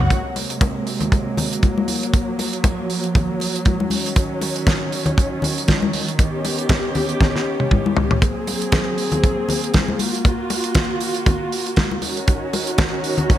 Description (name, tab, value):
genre	disco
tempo	118 BPM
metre	4/4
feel	swing 56% on 16ths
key	unclear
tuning	A4 = 441 Hz
part	dark studio string section	sustained chords	0.0-13.4 s	C3 to Ab4	-23 LUFS	equal	stereo widening
part	damped 70s drum kit	drums	0.1-13.4 s	hi-hat, kick drum, snare drum, toms	-19 LUFS	right 1 dB	none
part	congas	percussion	0.1-13.4 s	none	-25 LUFS	left 4 dB	none
room	light reverb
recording	none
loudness	-17 LUFS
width	side -12 dB against mid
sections	0.1-13.4 A section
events	drum fill 7.2-8.2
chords	0.1 Ab9; 1.9 Gbmaj7; 3.9 Ebm7; 6.2 Ebaug7; 8.2 Ab9; 10.0 Gbmaj7; 12.0 Ebm7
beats	| 0.10 0.61 1.12 1.63 | 2.13 2.64 3.15 3.66 | 4.16 4.67 5.18 5.68 | 6.19 6.70 7.21 7.71 | 8.22 8.73 9.24 9.74 | 10.25 10.76 11.27 11.78 | 12.28 12.79 13.30